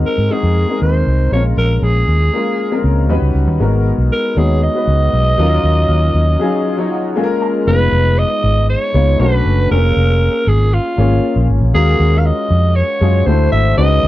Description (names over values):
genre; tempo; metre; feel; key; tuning
polished 1980s jazz-funk pop; 118 BPM; 4/4; straight; Eb minor; A4 = 440 Hz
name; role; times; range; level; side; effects
dark concert grand piano; accompaniment; 0.0-14.1 s; Gb3 to Bb5; -18 LUFS; left 3 dB; lush chorus
vintage muted fingered electric bass; bass; 0.0-14.1 s; F1 to Ab2; -13 LUFS; equal; none
growling alto saxophone; melody; 0.1-14.1 s; F4 to F5; -18 LUFS; right 1 dB; slapback echo
room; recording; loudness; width
little or no reverb; dry, close 1970s-style studio recording; -12 LUFS; side -15 dB against mid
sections
0.0-7.7 A section; 7.7-14.1 B section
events
break 6.7-7.7; grand piano fill 6.7-7.7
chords
0.0 Ab9; 1.3 Bbm7; 3.1 Eb7alt; 3.6 Abm7; 5.4 Ebm9; 7.2 Bbm7; 7.7 Fm7b5; 9.2 Bm7; 9.7 Bbm7/F; 11.7 Ebm11; 13.3 D9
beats
0.05 0.56 1.07 | 1.57 2.08 2.59 3.10 | 3.60 4.11 4.62 5.13 | 5.64 6.14 6.65 7.16 | 7.67 8.18 8.69 9.20 | 9.71 10.21 10.72 11.23 | 11.74 12.25 12.76 13.27 | 13.78